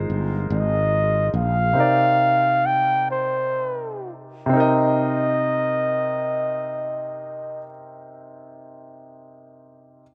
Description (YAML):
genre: R&B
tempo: 40-49 BPM (dotted quarters)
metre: 6/8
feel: straight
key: C minor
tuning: A4 = 440 Hz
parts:
  - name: dark concert grand piano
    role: accompaniment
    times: 0.0-10.0 s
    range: C3 to Eb5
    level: -27 LUFS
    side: equal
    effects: slapback echo
  - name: sustaining fretless electric bass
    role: bass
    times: 0.0-1.7 s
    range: G1 to Bb1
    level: -25 LUFS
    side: equal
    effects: none
  - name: breathy flugelhorn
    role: melody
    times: 0.5-7.6 s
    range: C5 to G5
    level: -23 LUFS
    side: equal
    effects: slapback echo
room: light reverb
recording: recorded outdoors, with no room sound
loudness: -21 LUFS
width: mono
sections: 0.0-4.5 A section; 4.5-7.5 B section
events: slowing down 0.0-4.5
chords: 0.0 Ab69; 1.8 Cm7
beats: 0.50 | 1.75 3.08 | 4.52 6.02